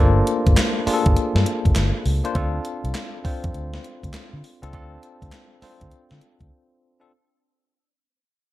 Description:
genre	R&B, new jack swing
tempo	101 BPM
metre	4/4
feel	swing 65% on 16ths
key	unclear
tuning	A4 = 438 Hz
part	bell-like tine electric piano	accompaniment	0.0-7.1 s	A3 to C5	-25 LUFS	left 2 dB	medium stereo tremolo
part	vintage muted fingered electric bass	bass	0.0-6.5 s	G1 to D3	-21 LUFS	equal	none
part	gated 80s digital drum machine	drums	0.3-6.5 s	handclaps, hi-hat, kick drum, snare drum	-22 LUFS	equal	gated reverb, gated reverb snare
room	digital ambience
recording	none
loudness	-19 LUFS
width	side -16 dB against mid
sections	0.0-7.1 A section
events	fade-out 0.0-7.1; break 6.5-7.1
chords	0.0 Gm7; 2.4 Dm7

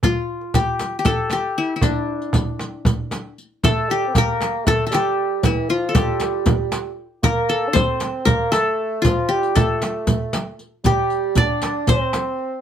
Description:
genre	Turkish makam ensemble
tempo	233 BPM (eighths)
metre	7/8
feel	straight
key	unclear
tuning	A4 = 440 Hz
part	qanun	melody	0.0-12.6 s	D4 to D5	-21 LUFS	left 4 dB	none
part	darbuka	percussion	0.0-12.5 s	none	-23 LUFS	right 4 dB	none
part	frame drum	percussion	0.0-12.3 s	none	-22 LUFS	left 1 dB	none
part	riq	percussion	0.0-12.3 s	none	-28 LUFS	left 3 dB	none
part	mellow bassoon	second line	3.6-12.6 s	E3-29c to D4	-24 LUFS	right 6 dB	slapback echo
room	light reverb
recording	close, detailed microphones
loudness	-18 LUFS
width	side -9 dB against mid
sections	0.0-3.6 A section; 3.6-12.6 B section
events	none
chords	none

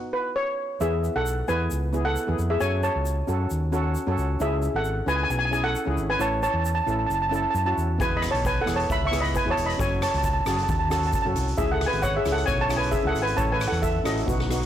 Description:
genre	calypso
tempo	134 BPM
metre	4/4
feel	swing 53% on 16ths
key	E major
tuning	A4 = 440 Hz
part	steel pan	accompaniment	0.0-14.7 s	B3 to A4	-31 LUFS	right 1 dB	none
part	steel pan	melody	0.1-14.7 s	F#4 to C#6	-25 LUFS	equal	none
part	fingered electric bass	bass	0.8-14.7 s	E1 to F#2	-27 LUFS	equal	tube saturation
part	egg shaker	percussion	0.8-14.6 s	none	-44 LUFS	left 6 dB	none
part	street-band drum kit	drums	8.0-14.7 s	hi-hat, kick drum, rim click	-29 LUFS	equal	soft clipping on snare
room	little or no reverb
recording	blown-out, overdriven recording, overdrive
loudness	-22 LUFS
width	side -10 dB against mid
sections	0.8-14.7 A section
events	break 0.0-0.8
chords	0.0 B; 0.8 E; 2.6 F#m; 4.4 C#m; 6.2 A; 8.0 E; 9.8 F#madd9; 11.6 C#m; 13.4 A

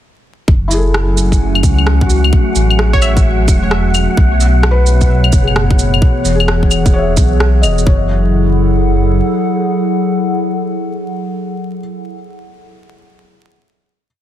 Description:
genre	future garage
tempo	130 BPM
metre	4/4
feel	swing 64% on 16ths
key	F# minor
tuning	A4 = 440 Hz
part	warbly tape-like pad	sustained chords	0.7-12.1 s	B2 to G#5	-17 LUFS	equal	chorus, built-in reverb, sidechain pumping
part	dark detuned saw bass	bass	0.5-9.2 s	E1 to C#2	-13 LUFS	equal	sidechain pumping
part	electronic kick drum	drums	0.5-8.0 s	none	-12 LUFS	equal	none
part	wind-like tuned noise texture	texture	1.2-7.9 s	F#4 to F#5	-24 LUFS	left 2 dB	built-in reverb
part	felt-muted upright piano	accompaniment	0.7-14.1 s	E4 to E5	-22 LUFS	left 2 dB	sidechain pumping, ping-pong delay
part	electronic shaker, rim click and claves	drums	0.7-7.8 s	none	-19 LUFS	left 1 dB	none
part	glassy wavetable pluck	melody	2.9-3.5 s	C#5 to E5	-23 LUFS	right 2 dB	chorus, cassette tape, tape echo
room	light reverb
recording	dense, heavily limited modern master, vinyl crackle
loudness	-10 LUFS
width	side -12 dB against mid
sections	0.5-7.9 groove; 7.9-11.6 final chord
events	none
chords	0.5 F#m7; 4.2 B7sus4; 6.0 E6; 7.9 F#m7

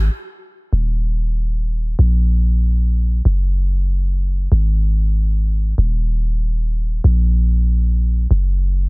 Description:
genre	afrobeats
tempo	95 BPM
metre	4/4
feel	straight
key	Eb minor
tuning	A4 = 441 Hz
part	warm 808-style bass	bass	0.0-8.9 s	Eb1 to Bb1	-15 LUFS	equal	none
room	digital ambience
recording	dense, heavily limited modern master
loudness	-15 LUFS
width	side -35 dB against mid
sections	0.7-8.9 A section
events	none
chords	none

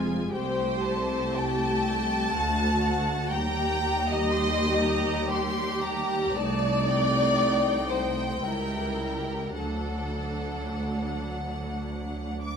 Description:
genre	classical, slow romantic movement for string orchestra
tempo	51-62 BPM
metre	3/4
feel	rubato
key	unclear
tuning	A4 = 436 Hz
part	rich symphonic violin section	melody	0.0-12.6 s	F#5 to D6	-35 LUFS	left 2 dB	none
part	rich symphonic viola section	accompaniment	0.0-12.6 s	F#3 to G4	-31 LUFS	equal	none
part	warm symphonic cello section	bass	0.0-12.6 s	C2 to F2	-32 LUFS	right 2 dB	none
part	warm symphonic double bass section	bass	0.0-12.6 s	F1 to Eb2	-34 LUFS	right 2 dB	none
part	warm symphonic violin section	second line	0.3-11.8 s	G4 to A5	-28 LUFS	left 2 dB	none
room	wet recital hall reverb, RT60 1.3 s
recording	none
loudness	-24 LUFS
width	side -6 dB against mid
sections	0.0-12.6 A section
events	none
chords	0.3 Am7/C; 2.4 D; 3.3 Eb; 6.4 Adim/C; 8.4 C#dim7; 9.6 D

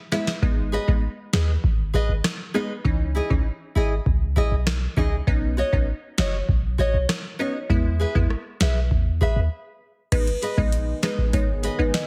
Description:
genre	dancehall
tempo	99 BPM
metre	4/4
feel	straight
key	G# minor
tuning	A4 = 436 Hz
part	wavetable chord stab	accompaniment	0.1-11.9 s	E3 to E4	-30 LUFS	equal	none
part	nylon-string guitar	arpeggios	0.1-11.8 s	E4 to E5	-31 LUFS	equal	none
part	booming analog drum machine	drums	0.1-12.1 s	crash cymbal, hi-hat, kick drum, rim click, snare drum	-25 LUFS	equal	none
part	clean 808-style bass	bass	0.4-11.9 s	F#1 to E2	-26 LUFS	equal	none
part	marimba with medium mallets	melody	10.1-12.1 s	B4 to D#5	-31 LUFS	equal	tape echo
part	deep dark ambient pad	sustained chords	10.6-12.1 s	D#3 to G#4	-39 LUFS	equal	chorus, built-in reverb, sidechain pumping
room	light reverb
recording	heavily compressed radio sound, multiband compression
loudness	-23 LUFS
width	mono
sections	0.0-10.1 A section; 10.1-12.1 B section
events	break 0.0-0.4, 9.5-10.1; drum fill 0.0-0.4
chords	0.4 G#m; 2.8 C#madd9; 5.3 Badd9; 7.7 E; 10.1 G#m

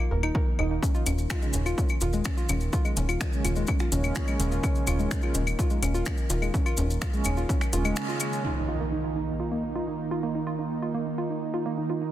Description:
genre	melodic techno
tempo	126 BPM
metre	4/4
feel	straight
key	unclear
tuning	A4 = 442 Hz
part	woody wave-folded pluck	arpeggios	0.0-12.1 s	Ab3 to Eb5	-32 LUFS	equal	chorus, sidechain pumping, digital delay
part	analog drone	drone	0.0-12.1 s	Eb3 to Bb3	-38 LUFS	left 1 dB	chorus, sidechain pumping
part	plucky analog bass	bass	0.1-7.9 s	Eb1	-27 LUFS	equal	sidechain pumping
part	house drum kit	drums	0.2-8.3 s	claves, finger snaps, hi-hat	-34 LUFS	left 2 dB	overdrive, sidechain pumping on perc, sidechain pumping on hats, soft clipping on snare
part	electronic kick drum	drums	0.3-7.6 s	none	-27 LUFS	equal	overdrive
part	brassy analog pad	stabs	0.6-12.1 s	Db3 to Eb4	-32 LUFS	right 4 dB	chorus, sidechain pumping, digital delay
part	maracas	percussion	0.8-8.4 s	none	-38 LUFS	left 3 dB	none
part	impact	sound effects	8.4-10.3 s	none	-35 LUFS	equal	none
room	light reverb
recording	dense, heavily limited modern master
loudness	-25 LUFS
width	side -13 dB against mid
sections	0.0-8.4 A section; 8.4-12.1 B section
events	filter sweep on analog synth pad 0.0-8.4, 8.4-12.1; break 8.0-8.4; band accent 8.0; impact 8.4-10.3; filter sweep on synth pluck 8.4-12.1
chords	0.0 Eb5; 0.8 Db/Eb; 8.4 Ebsus2

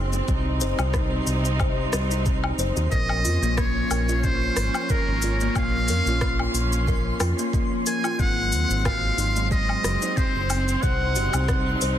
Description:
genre	organic downtempo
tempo	91 BPM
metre	4/4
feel	swing 55% on 16ths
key	Bb minor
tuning	A4 = 440 Hz
part	rich studio string section	sustained chords	0.0-12.0 s	C3 to Eb4	-30 LUFS	right 3 dB	sidechain pumping
part	kalimba	arpeggios	0.0-12.0 s	Ab3 to C5	-29 LUFS	left 2 dB	vintage 12-bit sampler grit, digital delay
part	smooth synth bass	bass	0.0-12.0 s	Gb1 to F2	-25 LUFS	equal	sidechain pumping
part	twinkling granular texture	texture	0.0-12.0 s	C5 to C6	-37 LUFS	right 1 dB	built-in reverb
part	deep house drum kit	drums	0.1-12.0 s	hi-hat, rim click, shaker, woodblock	-30 LUFS	left 2 dB	none
part	electronic kick drum	drums	0.3-11.6 s	none	-25 LUFS	equal	overdrive
part	trumpet with metal mute	melody	2.9-11.8 s	Bb4 to Ab5	-27 LUFS	equal	digital delay
room	light reverb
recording	dense, heavily limited modern master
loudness	-21 LUFS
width	side -10 dB against mid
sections	0.0-12.0 A section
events	none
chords	0.3 Cdim; 2.9 Bbm; 8.2 Ab7; 10.8 Cdim

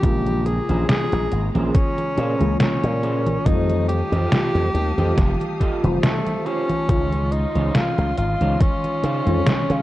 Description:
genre	vaporwave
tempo	70 BPM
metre	4/4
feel	swing 54% on 16ths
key	Db lydian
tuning	A4 = 440 Hz
part	clear tenor saxophone	melody	0.0-9.8 s	A3 to Ab4	-25 LUFS	equal	tape echo
part	mellow FM electric piano	accompaniment	0.0-9.8 s	Db3 to C5	-27 LUFS	left 1 dB	wide subtle chorus, tape echo
part	bright symphonic string section	sustained chords	0.0-9.8 s	Ab3 to Eb6	-36 LUFS	left 1 dB	none
part	slap bass with an envelope filter	bass	0.0-9.8 s	F1 to Db3	-21 LUFS	equal	tube saturation
part	detuned 8-bit digital drum machine	drums	0.0-9.8 s	congas, hi-hat, snare drum	-24 LUFS	right 1 dB	overdrive, vintage 12-bit sampler grit, gated reverb
part	electronic kick drum	drums	0.0-8.8 s	none	-19 LUFS	equal	overdrive, vintage 12-bit sampler grit
part	electric guitar at the edge of break-up	riff	0.5-9.3 s	Db4 to Eb5	-31 LUFS	right 2 dB	analog chorus
room	light reverb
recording	cassette tape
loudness	-18 LUFS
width	side -15 dB against mid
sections	0.0-9.8 A section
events	none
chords	0.0 Bbm9; 3.5 F9; 6.9 Dbmaj9

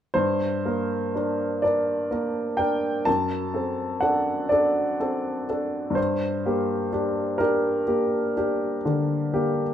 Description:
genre	classical, romantic nocturne for solo piano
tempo	42 BPM (dotted quarters)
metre	12/8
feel	rubato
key	G minor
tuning	A4 = 440 Hz
part	clear upright piano	solo	0.1-9.7 s	F#2 to A5	-22 LUFS	equal	none
room	moderate large studio reverb, RT60 1.2 s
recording	minimal, uncompressed stereo recording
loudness	-22 LUFS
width	side -10 dB against mid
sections	0.2-9.7 A section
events	none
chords	0.2 Gm; 3.1 D7/F#; 6.0 Gm

